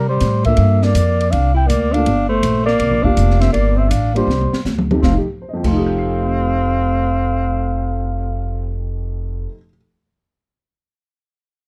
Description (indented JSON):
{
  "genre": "jazz, small-group swing and bop",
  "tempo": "162 BPM",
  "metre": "4/4",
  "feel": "swing 66% on 8ths",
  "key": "F major",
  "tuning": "A4 = 440 Hz",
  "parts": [
    { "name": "trumpet with bucket mute", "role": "melody", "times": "0.0-8.8 s", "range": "C5 to G5", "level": "-24 LUFS", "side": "equal", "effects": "none" },
    { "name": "breathy alto saxophone", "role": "second line", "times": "0.0-8.7 s", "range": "G3 to E4", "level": "-24 LUFS", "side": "equal", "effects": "none" },
    { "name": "upright bass", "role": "bass", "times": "0.0-9.4 s", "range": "F1 to C3", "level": "-20 LUFS", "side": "equal", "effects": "none" },
    { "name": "open jazz drum kit", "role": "drums", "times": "0.2-5.7 s", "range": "crash cymbal, hi-hat, kick drum, ride cymbal, snare drum, toms", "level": "-25 LUFS", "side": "equal", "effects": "none" },
    { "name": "dark upright piano", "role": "accompaniment", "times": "0.5-9.7 s", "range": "F2 to C7", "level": "-26 LUFS", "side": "equal", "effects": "none" }
  ],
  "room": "light reverb",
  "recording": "dark, warm production",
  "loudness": "-17 LUFS",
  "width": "mono",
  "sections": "0.0-5.0 A section; 5.0-8.0 B section",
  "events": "drum fill 4.3-5.0",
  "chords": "0.0 C9sus4; 0.6 Gm9; 1.3 C9sus4; 2.1 Gmadd9; 2.8 C9sus4; 3.5 Gm9; 4.3 Csus2; 5.0 F9",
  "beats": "0.21 | 0.58 0.95 1.32 1.69 | 2.06 2.43 2.80 3.17 | 3.54 3.91 4.28 4.65 | 5.02 5.39 5.76 6.13 | 6.50 6.88 7.25 7.62"
}